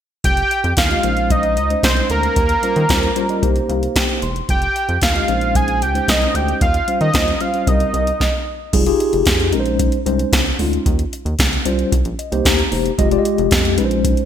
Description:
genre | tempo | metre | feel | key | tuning
early-eighties boogie funk | 113 BPM | 4/4 | straight | F minor | A4 = 439 Hz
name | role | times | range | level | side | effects
fat analog lead | melody | 0.2-8.5 s | Bb4 to Ab5 | -19 LUFS | right 1 dB | chorus
rubbery square bass | bass | 0.2-14.1 s | E1 to Eb3 | -21 LUFS | equal | none
electro analog drum machine | drums | 0.2-14.3 s | crash cymbal, hi-hat, kick drum, snare drum | -18 LUFS | equal | gated reverb
mellow tine electric piano | accompaniment | 0.9-14.2 s | G3 to C6 | -20 LUFS | left 2 dB | medium stereo tremolo
room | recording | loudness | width
moderate lush hall reverb, RT60 1.6 s | bright 1980s-style digital production | -15 LUFS | side -9 dB against mid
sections
0.2-8.7 A section; 8.7-14.3 B section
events
tine electric piano fill 3.4-4.5, 11.9-13.0; stop 8.2-8.7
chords
0.2 Fm9; 1.0 Bbm11; 2.4 Eb13; 3.4 Cm7; 4.5 Fm9; 5.3 Bbm11; 6.6 Eb13; 7.7 Cm7; 8.7 Fm9; 9.5 Bbm11; 10.9 Eb13; 11.9 Cm7; 13.0 Fm9

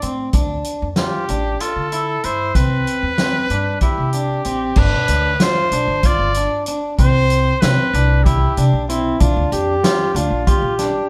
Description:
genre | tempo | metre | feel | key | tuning
progressive instrumental, band music in an uneven meter | 190 BPM (eighths) | 7/8 | straight | unclear | A4 = 439 Hz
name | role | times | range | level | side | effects
clear trumpet | melody | 0.0-9.0 s | G4 to D5 | -23 LUFS | equal | none
electric guitar at the edge of break-up | arpeggios | 0.0-11.1 s | C4 to F4 | -25 LUFS | equal | none
upright bass | bass | 0.0-10.9 s | G1 to D3 | -22 LUFS | equal | none
vintage drum kit | drums | 0.0-10.9 s | crash cymbal, hi-hat, kick drum, snare drum | -21 LUFS | equal | none
warm flugelhorn | second line | 8.9-11.1 s | E4 to G4 | -22 LUFS | equal | none
room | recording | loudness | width
wet stone room reverb, RT60 1.2 s | band playing live in one room | -17 LUFS | mono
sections
0.0-4.8 A section; 4.8-11.1 B section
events
none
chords
0.3 Dmadd9; 2.6 Cmaj9; 4.8 G7; 7.0 Cmaj7(no3); 9.2 Bb6

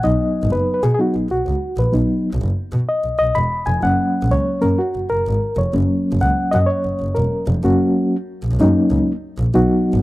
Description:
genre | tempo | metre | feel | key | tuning
uptempo 1960s-style soul | 126 BPM | 4/4 | swing 65% on 8ths | unclear | A4 = 440 Hz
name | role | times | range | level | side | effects
mellow reed electric piano | accompaniment | 0.0-10.0 s | F#3 to B5 | -17 LUFS | equal | fast tremolo
dark double bass | bass | 0.0-10.0 s | E1 to B2 | -20 LUFS | equal | none
room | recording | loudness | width
light reverb | none | -16 LUFS | side -18 dB against mid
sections
0.0-7.7 A section; 7.7-9.6 B section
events
reed electric piano solo 0.0-7.7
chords
0.0 B; 3.8 F#

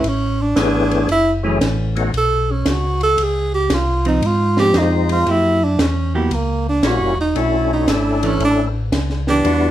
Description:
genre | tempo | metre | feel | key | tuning
soul jazz organ trio | 115 BPM | 4/4 | swing 67% on 8ths | unclear | A4 = 436 Hz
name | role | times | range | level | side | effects
warm tenor saxophone | melody | 0.0-9.7 s | A#3 to A4 | -18 LUFS | right 2 dB | none
hollow-body jazz guitar | accompaniment | 0.0-9.4 s | E3 to G4 | -22 LUFS | right 3 dB | none
mellow tonewheel organ | bass | 0.0-9.7 s | E1 to G#2 | -20 LUFS | equal | chorus vibrato, slow rotary speaker
compact cocktail drum kit | drums | 0.0-9.6 s | hi-hat, ride cymbal, snare drum | -24 LUFS | equal | none
percussive tonewheel organ | melody | 0.6-9.7 s | E3 to C#5 | -20 LUFS | left 4 dB | slow rotary speaker, overdrive, chorus vibrato
room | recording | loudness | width
light reverb | band playing live in one room | -15 LUFS | side -12 dB against mid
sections
0.0-9.7 A section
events
tenor saxophone solo 0.0-9.7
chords
0.0 Amaj9; 1.1 F#m7; 2.1 Bsus2; 3.2 C#maj9; 5.3 F#7b9; 7.4 Bm11

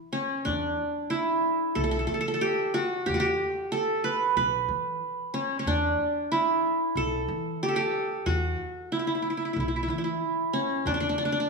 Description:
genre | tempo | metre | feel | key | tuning
Turkish makam ensemble | 92 BPM | 4/4 | straight | E makam huseyni | A4 = 440 Hz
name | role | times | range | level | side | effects
qanun | melody | 0.1-11.5 s | C#4-30c to B4 | -25 LUFS | right 1 dB | none
upright bass | bass | 0.5-11.1 s | B1 to E3 | -33 LUFS | equal | none
room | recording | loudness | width
moderate scoring stage reverb, RT60 1.7 s | small room ambience | -25 LUFS | side -3 dB against mid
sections
0.0-11.5 A section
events
none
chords
none

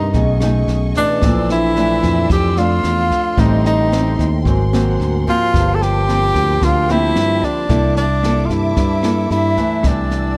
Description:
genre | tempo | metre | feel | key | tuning
bossa nova | 111 BPM | 4/4 | straight | unclear | A4 = 441 Hz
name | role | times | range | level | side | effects
breathy tenor saxophone | melody | 0.0-10.4 s | D4 to A4 | -20 LUFS | equal | none
hollow concert flute | second line | 0.0-10.4 s | D5 to A5 | -29 LUFS | equal | none
nylon-string guitar | accompaniment | 0.0-10.4 s | F2 to A4 | -23 LUFS | equal | none
vibraphone with soft mallets | accompaniment | 0.0-9.9 s | C4 to E6 | -29 LUFS | equal | none
warm symphonic violin section | sustained chords | 0.0-10.4 s | A4 to E6 | -35 LUFS | equal | none
fingered electric bass | bass | 0.0-10.4 s | G1 to G2 | -20 LUFS | equal | none
jazz brush drum kit | drums | 0.1-10.2 s | kick drum, rim click, snare drum | -24 LUFS | equal | none
room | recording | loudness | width
little or no reverb | close, detailed microphones | -16 LUFS | mono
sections
0.0-9.8 A section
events
none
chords
0.1 B13; 1.2 Bbmaj9#11; 3.4 Am7b5; 4.5 Ab9; 5.5 Gm11; 7.7 C13; 9.8 C69

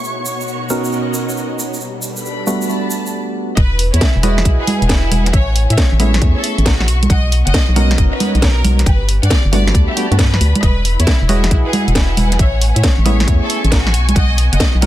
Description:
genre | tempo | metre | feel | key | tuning
UK garage, two-step garage | 136 BPM | 4/4 | swing 66% on 16ths | E major | A4 = 439 Hz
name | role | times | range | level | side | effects
soft string machine | sustained chords | 0.0-3.1 s | B2 to C#5 | -28 LUFS | equal | phaser, ensemble chorus, sidechain pumping
egg shaker | percussion | 0.0-3.1 s | none | -26 LUFS | right 3 dB | none
dark studio string section | texture | 0.0-14.9 s | G3 to C#6 | -26 LUFS | left 2 dB | sidechain pumping
percussive organ stab | stabs | 0.7-14.9 s | G3 to D#5 | -22 LUFS | right 1 dB | chorus, vintage 12-bit sampler grit, digital delay
clear symphonic violin section | melody | 3.6-14.9 s | E4 to G5 | -23 LUFS | left 1 dB | tape echo
organ-like FM bass | bass | 3.6-14.9 s | E1 to A2 | -14 LUFS | equal | sidechain pumping
electronic kick drum | drums | 3.6-14.7 s | none | -14 LUFS | equal | none
garage drum kit | drums | 3.6-14.9 s | congas, hi-hat, snare drum | -18 LUFS | right 1 dB | none
room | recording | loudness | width
digital ambience | dense, heavily limited modern master | -12 LUFS | side -14 dB against mid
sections
0.0-3.6 A section; 3.6-14.9 B section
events
filter sweep on string machine 0.0-3.6; break 3.1-3.6; drop 3.6-14.9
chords
0.0 Bmaj9; 1.8 Gmaj9; 3.6 Emaj9; 5.3 Amaj9; 6.9 Bmaj9; 8.9 Gmaj9; 10.6 Emaj9; 12.4 Amaj9; 13.9 Badd9

